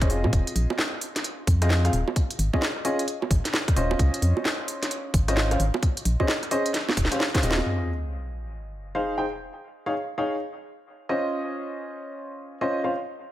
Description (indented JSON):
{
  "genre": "UK garage, two-step garage",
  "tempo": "131 BPM",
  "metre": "4/4",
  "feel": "swing 63% on 16ths",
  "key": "F minor",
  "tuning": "A4 = 440 Hz",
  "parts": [
    { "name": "dark baby grand piano", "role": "stabs", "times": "0.0-12.9 s", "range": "C4 to G5", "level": "-28 LUFS", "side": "equal", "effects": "dub echo" },
    { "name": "organ-like FM bass", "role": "bass", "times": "0.0-7.6 s", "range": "Eb1 to Bb2", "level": "-23 LUFS", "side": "equal", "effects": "none" },
    { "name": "electronic kick drum", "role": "drums", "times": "0.0-7.4 s", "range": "none", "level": "-24 LUFS", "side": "equal", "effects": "none" },
    { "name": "garage drum kit", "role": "drums", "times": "0.0-7.6 s", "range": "bongos, hi-hat, rim click, snare drum", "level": "-27 LUFS", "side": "right 1 dB", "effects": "none" },
    { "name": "sub drop", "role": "sound effects", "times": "7.7-9.5 s", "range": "none", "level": "-32 LUFS", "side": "equal", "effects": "none" }
  ],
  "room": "light reverb, digital ambience",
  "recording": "none",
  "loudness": "-23 LUFS",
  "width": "side -14 dB against mid",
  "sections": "0.0-7.7 A section; 7.7-13.3 B section",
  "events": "drum fill 6.7-7.7; impact 7.7-9.5",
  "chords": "0.3 Fm7; 1.9 Eb9sus4; 4.0 Dbmaj9; 5.8 Bbm11; 6.7 Eb13; 7.7 Fm7; 9.3 Eb9sus4; 11.3 Dbmaj9"
}